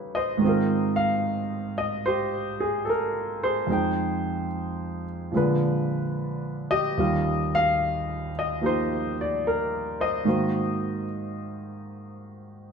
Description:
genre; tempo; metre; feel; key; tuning
jazz ballad; 73 BPM; 4/4; swing 66% on 8ths; unclear; A4 = 436 Hz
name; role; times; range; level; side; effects
warm concert grand piano; solo; 0.0-12.7 s; Eb2 to G5; -24 LUFS; equal; none
room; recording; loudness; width
wet echo chamber reverb, RT60 1.3 s; none; -23 LUFS; side -6 dB against mid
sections
0.0-12.7 A section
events
none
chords
0.4 Abmaj13; 3.7 Fm7; 5.3 Bb7b9; 7.0 Ebadd9; 10.3 Ab9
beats
| 0.41 1.23 2.05 2.86 | 3.68 4.50 5.32 6.14 | 6.97 7.79 8.61 9.43 | 10.25 11.07 11.89 12.71

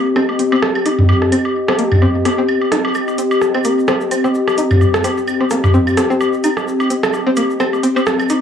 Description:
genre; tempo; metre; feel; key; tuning
minimal techno; 129 BPM; 4/4; swing 56% on 16ths; C minor; A4 = 439 Hz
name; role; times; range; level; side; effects
warbly tape-like pad; texture; 0.0-8.4 s; C4 to Eb5; -16 LUFS; left 2 dB; chorus, built-in reverb
string-like resonator pluck; riff; 0.2-8.3 s; Bb3 to Eb4; -20 LUFS; left 1 dB; chorus, phaser, tape echo
organic electronic drum kit; percussion; 0.2-8.4 s; claves, rim click, toms, woodblock; -17 LUFS; right 1 dB; small room ambience
electronic hi-hat; drums; 0.4-8.4 s; none; -28 LUFS; right 2 dB; small room ambience
egg shaker; percussion; 2.9-8.4 s; none; -40 LUFS; left 2 dB; none
room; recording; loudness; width
moderate lush hall reverb, RT60 1.6 s, digital ambience; dry, gritty hardware recording, cassette tape, small room ambience; -13 LUFS; side -8 dB against mid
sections
0.0-8.4 A section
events
filter sweep on synth pluck 0.0-8.4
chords
0.0 Cm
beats
0.16 0.62 | 1.09 1.55 2.02 2.48 | 2.95 3.42 3.88 4.35 | 4.81 5.28 5.74 6.21 | 6.67 7.14 7.60 8.07

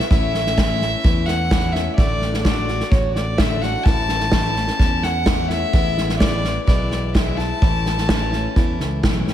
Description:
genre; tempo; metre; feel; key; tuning
indie folk with a building arrangement; 128 BPM; 4/4; straight; A major; A4 = 440 Hz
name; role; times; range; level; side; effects
warm fiddle; melody; 0.0-9.0 s; C#5 to A5; -24 LUFS; left 1 dB; slapback echo
picked plugged-in steel-string acoustic guitar; accompaniment; 0.0-9.3 s; A2 to F#4; -26 LUFS; left 5 dB; slapback echo
unplugged drum kit; drums; 0.0-9.3 s; kick drum, snare drum; -19 LUFS; right 1 dB; none
picked electric bass; bass; 0.1-9.3 s; A1 to E2; -24 LUFS; right 1 dB; none
room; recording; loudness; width
light reverb, studio reverb; none; -16 LUFS; side -11 dB against mid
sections
0.0-9.3 A section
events
none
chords
0.1 A; 2.0 D/A; 3.9 A; 5.7 E/A; 7.6 A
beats
| 0.11 0.57 1.04 1.51 | 1.98 2.45 2.92 3.39 | 3.86 4.33 4.79 5.26 | 5.74 6.21 6.68 7.15 | 7.62 8.09 8.56 9.04

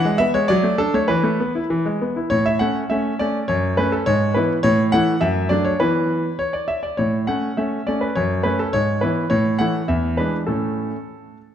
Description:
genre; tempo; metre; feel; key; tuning
classical-period piano sonatina; 102 BPM; 2/4; straight; A major; A4 = 440 Hz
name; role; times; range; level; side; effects
bright concert grand piano; solo; 0.0-11.4 s; E2 to F#5; -18 LUFS; equal; none
room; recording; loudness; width
moderate recital hall reverb, RT60 1.8 s; dark, warm production; -18 LUFS; side -9 dB against mid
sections
0.0-2.3 A section; 2.3-11.5 B section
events
none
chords
0.5 D/F#; 1.1 Esus4; 1.7 E; 2.3 A; 3.5 F#m; 4.1 E/G#; 4.6 A; 5.2 D/F#; 5.8 E5; 7.0 A; 8.2 F#m; 8.7 E/G#; 9.3 A; 9.9 E7; 10.5 A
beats
0.50 | 1.10 1.71 | 2.31 2.90 | 3.49 4.06 | 4.63 5.21 | 5.79 6.39 | 6.98 7.57 | 8.16 8.73 | 9.30 9.88 | 10.47 11.07

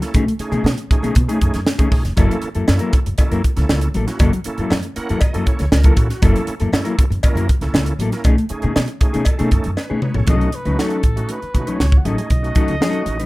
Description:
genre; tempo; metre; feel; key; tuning
funk; 118 BPM; 4/4; straight; unclear; A4 = 442 Hz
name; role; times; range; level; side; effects
mellow electric guitar; accompaniment; 0.0-13.3 s; F#3 to B4; -22 LUFS; left 3 dB; none
bright tonewheel organ; stabs; 0.0-13.2 s; A3 to F#5; -27 LUFS; right 2 dB; chorus vibrato, slapback echo
crisp fusion drum kit; drums; 0.0-13.3 s; hi-hat, kick drum, snare drum, toms; -17 LUFS; equal; none
upright bass; bass; 0.1-13.2 s; E#1 to B2; -19 LUFS; equal; none
cowbell; percussion; 2.2-9.9 s; none; -29 LUFS; left 2 dB; none
breathy trumpet; melody; 10.3-13.3 s; A4 to F#5; -27 LUFS; right 1 dB; plate reverb
room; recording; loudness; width
light reverb; rough home demo mix; -15 LUFS; side -20 dB against mid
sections
0.0-10.3 A section; 10.3-13.3 B section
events
tonewheel organ fill 4.7-6.2, 8.8-10.3; drum fill 9.8-10.3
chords
0.1 B13; 2.2 F#7#9; 8.3 B13; 10.3 B9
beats
| 0.15 0.65 1.16 1.67 | 2.18 2.68 3.19 3.70 | 4.21 4.71 5.22 5.72 | 6.23 6.74 7.24 7.75 | 8.26 8.76 9.27 9.78 | 10.28 10.79 11.29 11.80 | 12.31 12.81

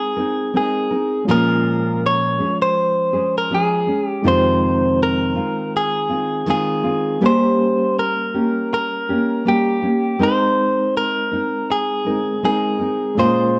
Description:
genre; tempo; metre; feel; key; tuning
acoustic pop; 81 BPM; 4/4; swing 55% on 16ths; unclear; A4 = 440 Hz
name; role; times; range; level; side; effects
direct-recorded clean electric guitar; melody; 0.0-13.6 s; G4 to Db5; -22 LUFS; equal; spring reverb
nylon-string guitar; accompaniment; 0.0-13.6 s; F2 to Bb4; -23 LUFS; equal; none
reed electric piano; accompaniment; 0.0-13.6 s; G3 to C5; -29 LUFS; equal; fast tremolo
room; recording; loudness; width
moderate studio ambience, RT60 0.5 s; worn, warbling old tape, cassette tape, warbly pitch drift; -19 LUFS; mono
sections
0.0-13.6 A section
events
none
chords
0.0 Abadd9; 1.3 Bbm7; 4.2 Fm7; 7.2 Gdim; 10.2 Abadd9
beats
0.53 | 1.27 2.02 2.76 3.50 | 4.25 4.99 5.73 6.48 | 7.22 7.97 8.71 9.46 | 10.20 10.94 11.69 12.44 | 13.18

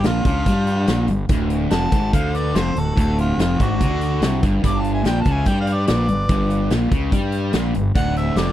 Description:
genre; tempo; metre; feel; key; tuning
blues rock power trio and southern rock; 144 BPM; 4/4; straight; unclear; A4 = 441 Hz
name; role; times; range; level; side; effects
clear harmonica; melody; 0.0-8.5 s; F4 to D6; -26 LUFS; equal; overdrive
lead guitar through a small cranked amp; second line; 0.0-8.5 s; C4 to B5; -33 LUFS; right 2 dB; overdrive
distorted electric guitar; riff; 0.0-8.5 s; D2 to G3; -22 LUFS; left 1 dB; distortion
fuzz fingered electric bass; bass; 0.0-8.5 s; D1 to G2; -22 LUFS; equal; overdrive
big rock drum kit; drums; 0.0-8.5 s; hi-hat, kick drum, snare drum; -22 LUFS; equal; none
room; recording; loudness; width
little or no reverb; dry, close 1970s-style studio recording; -17 LUFS; side -13 dB against mid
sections
0.0-8.5 A section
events
none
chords
0.0 G5; 1.3 D7; 4.6 G; 8.0 D5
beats
0.05 0.47 0.89 | 1.30 1.72 2.14 2.55 | 2.97 3.39 3.80 4.22 | 4.64 5.05 5.47 5.88 | 6.30 6.71 7.13 7.54 | 7.96 8.38

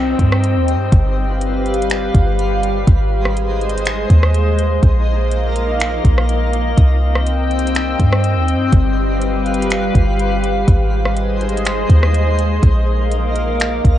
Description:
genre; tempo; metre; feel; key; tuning
hip hop, atmospheric cloud-rap; 123 BPM; 4/4; half-time; C minor; A4 = 440 Hz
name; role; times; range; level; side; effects
glassy FM pad; sustained chords; 0.0-14.0 s; G3 to G5; -19 LUFS; left 1 dB; ensemble chorus, built-in reverb, sidechain pumping
soft 808-style bass; bass; 0.0-14.0 s; G1 to G2; -16 LUFS; equal; none
downlifter; sound effects; 0.0-2.9 s; none; -37 LUFS; equal; none
twinkling granular texture; texture; 0.0-14.0 s; F3 to C5; -29 LUFS; equal; built-in reverb
smooth R&B drum kit; drums; 0.2-14.0 s; finger snaps, hi-hat, kick drum, rim click; -15 LUFS; equal; none
room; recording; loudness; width
digital ambience; worn, warbling old tape, cassette tape, warbly pitch drift, nothing above 10.6 kHz; -13 LUFS; side -12 dB against mid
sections
0.0-14.0 A section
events
none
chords
0.0 Cm; 0.9 G7; 2.9 Ab; 4.8 Bbsus4; 6.8 Cm; 8.7 G7; 10.7 Ab; 12.6 Bbsus4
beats
0.43 | 0.92 1.41 1.90 2.39 | 2.87 3.36 3.85 4.34 | 4.83 5.31 5.80 6.29 | 6.78 7.26 7.75 8.24 | 8.73 9.21 9.70 10.19 | 10.68 11.17 11.65 12.14 | 12.63 13.12 13.61

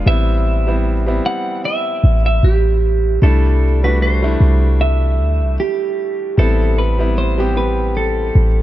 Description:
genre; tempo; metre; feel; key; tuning
contemporary R&B; 76 BPM; 4/4; swing 54% on 16ths; A dorian; A4 = 440 Hz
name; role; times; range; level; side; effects
clean electric guitar; melody; 0.0-8.6 s; G4 to F#5; -20 LUFS; right 2 dB; tape echo
clear grand piano; accompaniment; 0.0-8.6 s; G3 to G4; -22 LUFS; equal; none
clean 808-style bass; bass; 0.0-8.6 s; A1 to D2; -14 LUFS; equal; none
room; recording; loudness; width
small room reverb; none; -13 LUFS; side -14 dB against mid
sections
0.0-8.6 A section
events
none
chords
0.1 Am9; 3.2 C69; 6.4 Am9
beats
| 0.06 0.85 1.64 2.43 | 3.22 4.01 4.80 5.59 | 6.38 7.17 7.96

